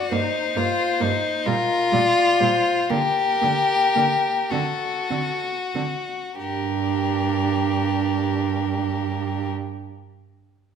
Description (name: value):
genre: classical, slow romantic movement for string quartet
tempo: 30-46 BPM (dotted quarters)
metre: 6/8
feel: rubato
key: G minor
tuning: A4 = 440 Hz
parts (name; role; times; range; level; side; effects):
- rich violin; melody; 0.0-9.5 s; A4 to D5; -28 LUFS; left 7 dB; none
- rich violin; second line; 0.0-9.5 s; Eb4 to G4; -22 LUFS; left 2 dB; none
- dark viola; accompaniment; 0.1-9.5 s; G3 to D4; -28 LUFS; right 7 dB; none
- warm cello; bass; 0.1-9.5 s; G2 to D3; -28 LUFS; right 6 dB; none
room: wet recital hall reverb, RT60 1.4 s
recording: minimal, uncompressed stereo recording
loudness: -20 LUFS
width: side -7 dB against mid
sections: 0.0-6.4 A section; 6.4-10.0 B section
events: slowing down 0.0-6.4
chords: 0.1 Gm; 1.5 Gm/Bb; 2.9 Gm/D; 4.5 D7; 6.4 Gm